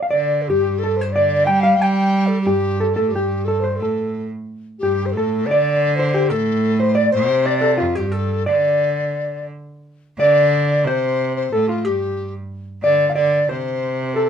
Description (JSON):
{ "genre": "chinese traditional, Chinese chamber ensemble", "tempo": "90 BPM", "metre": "2/4", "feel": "rubato", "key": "D yu mode", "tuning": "A4 = 441 Hz", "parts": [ { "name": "hollow-body jazz guitar", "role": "melody", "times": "0.0-14.3 s", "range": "F4 to G5", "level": "-20 LUFS", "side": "right 1 dB", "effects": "none" }, { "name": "bright cello", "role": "second line", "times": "0.1-14.3 s", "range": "F2 to G3", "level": "-21 LUFS", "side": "right 2 dB", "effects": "none" }, { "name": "mellow large dizi", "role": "second line", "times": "0.1-14.3 s", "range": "F4 to G5", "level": "-21 LUFS", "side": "left 5 dB", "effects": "none" } ], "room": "moderate studio reverb, RT60 0.5 s", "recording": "close, detailed microphones", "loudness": "-16 LUFS", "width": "side -8 dB against mid", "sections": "0.0-9.8 A section; 9.8-14.3 B section", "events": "none", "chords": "none" }